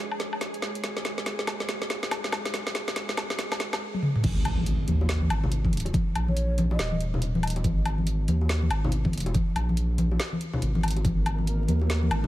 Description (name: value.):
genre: deep dubstep.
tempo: 141 BPM.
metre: 4/4.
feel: swing 61% on 16ths, half-time.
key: unclear.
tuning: A4 = 440 Hz.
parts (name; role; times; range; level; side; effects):
bowed-like drone; sustained chords; 0.0-3.8, 11.3-12.3 s; G#3 to G#4; -38 LUFS; right 1 dB; built-in reverb.
saturated sub bass; bass; 0.0-12.3 s; D#1 to D#2; -27 LUFS; equal; high-pass filter.
garage drum kit; drums; 0.1-12.2 s; crash cymbal, hi-hat, snare drum, toms, woodblock; -30 LUFS; equal; none.
electronic kick drum; drums; 4.2-11.2 s; none; -27 LUFS; equal; none.
congas and bongos; percussion; 4.2-12.3 s; none; -30 LUFS; left 2 dB; none.
impact; sound effects; 4.2-5.9 s; none; -34 LUFS; equal; none.
breathy mellow low ney; melody; 6.3-7.0 s; C#5 to D#5; -41 LUFS; right 2 dB; dub echo.
flickering grainy texture; texture; 11.2-12.3 s; A#3 to A#4; -36 LUFS; right 2 dB; built-in reverb.
room: digital ambience.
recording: vinyl crackle.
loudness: -24 LUFS.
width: side -15 dB against mid.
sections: 0.0-4.2 A section; 4.2-12.3 B section.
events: build-up 0.0-4.2; drum fill 0.0-3.8, 3.9-4.2; drop 4.2-12.3; impact 4.2-5.9.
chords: 0.0 G#sus2.